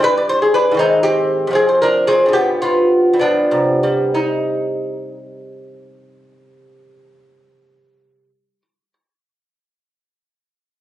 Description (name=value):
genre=classical, baroque-style dance for lute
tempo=60-81 BPM (dotted quarters)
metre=6/8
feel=rubato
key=C minor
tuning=A4 = 445 Hz
part: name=lute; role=solo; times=0.0-8.9 s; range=F2 to D5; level=-14 LUFS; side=equal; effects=none
room=moderate recital hall reverb, RT60 1.3 s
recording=recorded on a phone in the room, club reverb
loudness=-13 LUFS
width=side -13 dB against mid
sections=0.0-4.2 A section; 4.2-7.9 B section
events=slowing down 0.1-4.2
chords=0.1 G5; 0.8 Ab; 1.6 F5; 2.3 G7; 4.2 Cm